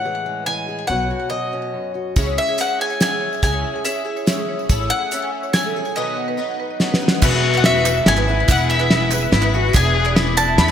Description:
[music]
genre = indie folk with a building arrangement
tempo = 142 BPM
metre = 3/4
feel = straight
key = E major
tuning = A4 = 440 Hz
[part]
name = mandolin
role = melody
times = 0.0-10.7 s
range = D#5 to B5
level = -22 LUFS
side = left 1 dB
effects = ping-pong delay
[part]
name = fingerpicked acoustic archtop guitar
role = accompaniment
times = 0.0-2.1 s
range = F#2 to G#4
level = -27 LUFS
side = left 3 dB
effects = none
[part]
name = upright bass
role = bass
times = 0.9-4.9, 7.2-10.7 s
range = E1 to E2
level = -21 LUFS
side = equal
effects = none
[part]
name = picked twelve-string acoustic guitar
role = accompaniment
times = 2.2-10.7 s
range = B2 to B4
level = -26 LUFS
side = left 5 dB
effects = analog chorus
[part]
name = marimba with hard mallets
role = arpeggios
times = 2.2-10.7 s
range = G#4 to D6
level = -26 LUFS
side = right 6 dB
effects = none
[part]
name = cloth-damped thuddy drum kit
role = drums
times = 2.2-10.7 s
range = crash cymbal, hi-hat, kick drum, ride cymbal, snare drum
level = -19 LUFS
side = equal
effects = gated reverb
[part]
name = tambourine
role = percussion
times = 2.2-10.6 s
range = none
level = -32 LUFS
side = right 17 dB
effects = none
[part]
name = warm cello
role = second line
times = 7.2-10.7 s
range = E4 to G#4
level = -21 LUFS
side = left 5 dB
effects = ping-pong delay
[part]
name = group handclap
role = percussion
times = 7.2-10.7 s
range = none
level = -31 LUFS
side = right 8 dB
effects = none
[sound]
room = moderate plate reverb, RT60 2.4 s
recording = bright 1980s-style digital production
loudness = -16 LUFS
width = side -9 dB against mid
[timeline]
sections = 0.0-7.2 A section; 7.2-10.7 B section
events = drum fill 6.8-7.2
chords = 0.0 Amaj7; 0.9 Bsus2; 2.2 C#m; 4.7 Amaj7; 6.0 B; 7.2 E; 9.7 E7

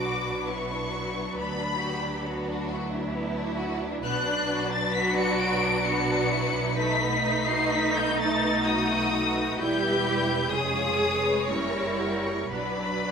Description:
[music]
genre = classical, slow romantic movement for string orchestra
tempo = 56-69 BPM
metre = 3/4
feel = rubato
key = B minor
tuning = A4 = 441 Hz
[part]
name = rich symphonic violin section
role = melody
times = 0.0-13.1 s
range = B5 to D7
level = -29 LUFS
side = left 4 dB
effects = none
[part]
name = clear studio violin section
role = second line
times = 0.0-13.1 s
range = G3 to D5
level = -31 LUFS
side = left 2 dB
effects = none
[part]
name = rich symphonic viola section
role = accompaniment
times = 0.0-13.1 s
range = F#3 to G#4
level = -29 LUFS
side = right 1 dB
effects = none
[part]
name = rich symphonic double bass section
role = bass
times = 0.0-13.1 s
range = E1 to D2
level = -34 LUFS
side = right 4 dB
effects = none
[part]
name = warm symphonic cello section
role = bass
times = 0.0-13.1 s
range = D4 to B4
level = -32 LUFS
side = right 3 dB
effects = none
[sound]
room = moderate concert hall reverb, RT60 1.9 s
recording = minimal, uncompressed stereo recording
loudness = -24 LUFS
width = side -6 dB against mid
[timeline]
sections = 0.0-13.1 A section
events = none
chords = 0.0 Bm; 1.4 Bm/D; 4.0 Bm; 6.8 B7; 9.6 Em; 10.5 C#7/E#; 11.5 F#7b9; 12.5 Bm

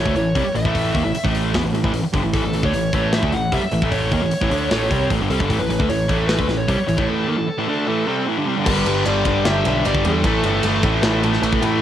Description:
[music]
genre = hard rock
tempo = 152 BPM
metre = 4/4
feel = straight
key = unclear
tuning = A4 = 440 Hz
[part]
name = bluesy overdriven lead guitar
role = melody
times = 0.0-10.8 s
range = A4 to F#5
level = -25 LUFS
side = left 1 dB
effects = distortion, cassette tape, analog delay
[part]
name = sludgy distorted guitar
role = riff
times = 0.0-11.8 s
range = G2 to D4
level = -22 LUFS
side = right 6 dB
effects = overdrive, cassette tape
[part]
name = tight distorted guitar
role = riff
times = 0.0-11.8 s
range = G2 to D4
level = -24 LUFS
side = left 10 dB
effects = distortion, cassette tape
[part]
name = picked electric bass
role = bass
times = 0.0-11.8 s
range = G1 to A2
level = -23 LUFS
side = left 1 dB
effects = none
[part]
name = tight metal drum kit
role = drums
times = 0.1-11.7 s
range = crash cymbal, hi-hat, kick drum, ride cymbal, snare drum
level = -24 LUFS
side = left 1 dB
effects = none
[part]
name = tight distorted guitar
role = riff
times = 8.6-11.8 s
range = G2 to A3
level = -27 LUFS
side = left 1 dB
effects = none
[sound]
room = light reverb, studio ambience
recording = home recording on cassette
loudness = -17 LUFS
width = side -10 dB against mid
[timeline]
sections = 0.0-8.7 A section; 8.7-11.8 B section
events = none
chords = 0.0 A; 8.7 G; 10.2 A5

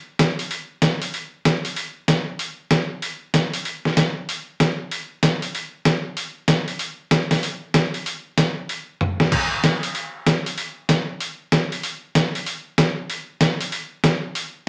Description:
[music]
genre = country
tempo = 191 BPM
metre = 4/4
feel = swing 63% on 8ths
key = none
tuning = none
[part]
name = trip hop sampler-style drum kit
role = drums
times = 0.2-14.4 s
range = crash cymbal, hi-hat, kick drum, snare drum, toms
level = -22 LUFS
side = equal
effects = overdrive
[sound]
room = wet studio reverb, RT60 0.8 s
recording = none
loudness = -23 LUFS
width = mono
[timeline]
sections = 0.0-14.4 A section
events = drum fill 9.0-9.3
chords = none

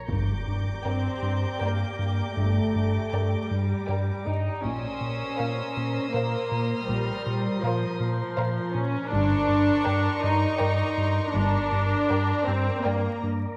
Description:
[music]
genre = cinematic, suspense film score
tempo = 80 BPM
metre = 3/4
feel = straight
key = G minor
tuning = A4 = 440 Hz
[part]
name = wind-like tuned noise texture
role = sustained chords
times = 0.0-13.6 s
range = G4 to Bb5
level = -37 LUFS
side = equal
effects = built-in reverb
[part]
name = smooth gliding synth bass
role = riff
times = 0.1-13.5 s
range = G2 to Bb2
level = -30 LUFS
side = equal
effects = none
[part]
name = rich studio double bass section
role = bass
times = 0.1-11.9 s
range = G1 to Bb1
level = -39 LUFS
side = equal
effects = none
[part]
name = warm symphonic cello section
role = bass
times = 0.1-11.9 s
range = G2 to Bb2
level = -40 LUFS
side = equal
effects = none
[part]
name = impact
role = sound effects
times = 0.1-2.4 s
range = none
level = -38 LUFS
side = equal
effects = none
[part]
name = warm studio violin section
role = texture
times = 0.1-13.2 s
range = Bb5 to G6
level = -40 LUFS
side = equal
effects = none
[part]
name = warm studio violin section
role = melody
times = 0.9-13.4 s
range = F5 to G5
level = -41 LUFS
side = equal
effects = none
[part]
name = warm studio violin section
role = second line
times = 0.9-13.4 s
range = Bb4 to D5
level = -37 LUFS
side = equal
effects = none
[part]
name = warm studio viola section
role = accompaniment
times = 0.9-13.2 s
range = F3 to Eb4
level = -30 LUFS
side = equal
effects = none
[sound]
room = wet recital hall reverb, RT60 1.6 s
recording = vinyl crackle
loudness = -26 LUFS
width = mono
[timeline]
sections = 0.1-13.6 A section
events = impact 0.1-2.4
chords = 0.1 Gm; 4.6 Bbmadd9; 9.1 Gm

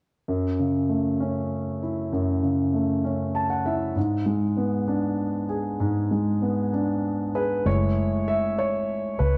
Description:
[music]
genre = pop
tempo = 65 BPM (dotted quarters)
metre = 6/8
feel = straight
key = F# minor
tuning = A4 = 439 Hz
[part]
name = warm concert grand piano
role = accompaniment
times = 0.3-9.4 s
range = F#2 to A5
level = -25 LUFS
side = equal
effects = none
[part]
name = vintage muted fingered electric bass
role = bass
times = 7.7-9.4 s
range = F#1 to C#2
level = -27 LUFS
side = equal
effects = none
[sound]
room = moderate echo chamber reverb, RT60 2.1 s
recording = none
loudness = -25 LUFS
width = mono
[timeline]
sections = 0.3-7.7 A section; 7.7-9.4 B section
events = grand piano fill 3.0-4.0; grand piano solo 7.7-9.4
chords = 0.3 F#m7; 4.0 G#dim; 7.7 F#m7

